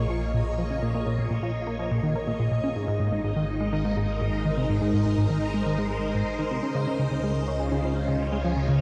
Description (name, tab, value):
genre	ambient, sequencer-driven space music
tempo	124 BPM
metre	4/4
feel	straight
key	unclear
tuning	A4 = 438 Hz
part	phased string machine	sustained chords	0.0-8.8 s	Db3 to Db5	-32 LUFS	equal	ensemble chorus, phaser
part	plucky analog bass	riff	0.0-8.8 s	Ab2 to Db4	-29 LUFS	equal	vintage 12-bit sampler grit, delay
part	fat analog bass	bass	0.0-8.8 s	Ab1 to Db2	-34 LUFS	equal	none
part	bubbling stepped-filter texture	texture	0.0-8.8 s	Eb5	-37 LUFS	equal	chorus, built-in reverb
room	wet huge ambient reverb, RT60 7.7 s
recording	dark, warm production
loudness	-26 LUFS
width	mono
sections	0.0-8.8 A section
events	none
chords	0.0 Bbm7; 2.8 Abadd9; 6.6 Dbmaj7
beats	0.34 | 0.82 1.31 1.79 2.27 | 2.76 3.24 3.73 4.21 | 4.69 5.18 5.66 6.15 | 6.63 7.11 7.60 8.08 | 8.56